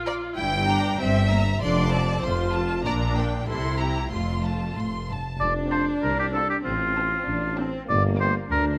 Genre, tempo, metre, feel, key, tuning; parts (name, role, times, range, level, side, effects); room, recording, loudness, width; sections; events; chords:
cinematic, playful, whimsical film cue; 96 BPM; 2/4; straight; F major; A4 = 440 Hz
rich chamber viola section; accompaniment; 0.0-8.4 s; A3 to F4; -34 LUFS; equal
rich chamber cello section; bass; 0.0-8.8 s; F2 to D4; -30 LUFS; equal
rich symphonic double bass section; bass; 0.0-8.8 s; F1 to D2; -31 LUFS; equal
rich chamber violin section; melody; 0.1-8.4 s; G5 to D6; -35 LUFS; equal
rich chamber violin section; second line; 0.1-8.4 s; F4 to G5; -32 LUFS; equal
clear oboe; second line; 5.4-8.7 s; F4 to D5; -28 LUFS; equal
warm tuba; bass; 5.4-8.8 s; F1 to D2; -32 LUFS; equal
light reverb; -24 LUFS; mono
0.0-5.4 A section; 5.4-8.8 A section
0.4 Edim/G; 1.6 F; 2.9 Gm/Bb; 3.5 C7; 4.1 F; 6.7 F/A; 7.9 Gm